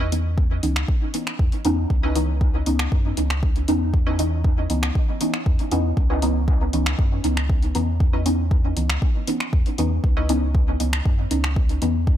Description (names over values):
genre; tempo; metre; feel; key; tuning
dub techno; 118 BPM; 4/4; straight; C# minor; A4 = 440 Hz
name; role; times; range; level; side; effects
wavetable chord stab; riff; 0.0-10.3 s; C#4 to D#5; -35 LUFS; right 2 dB; sidechain pumping, dub echo
pure sine sub bass; bass; 0.0-12.2 s; C#2 to F#2; -23 LUFS; equal; sidechain pumping
deep mellow chord stab; stabs; 0.1-11.9 s; E3 to D#4; -25 LUFS; equal; chorus, phaser, cassette tape, sidechain pumping, dub echo
deep house drum kit; drums; 0.1-11.9 s; finger snaps, hi-hat; -29 LUFS; equal; overdrive, dub echo
electronic kick drum; drums; 0.4-12.2 s; none; -20 LUFS; equal; overdrive
room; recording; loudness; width
light reverb, digital ambience; none; -19 LUFS; side -11 dB against mid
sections
0.0-6.0 A section; 6.0-12.2 A section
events
filter sweep on synth stab 0.0-6.0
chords
0.0 C#m9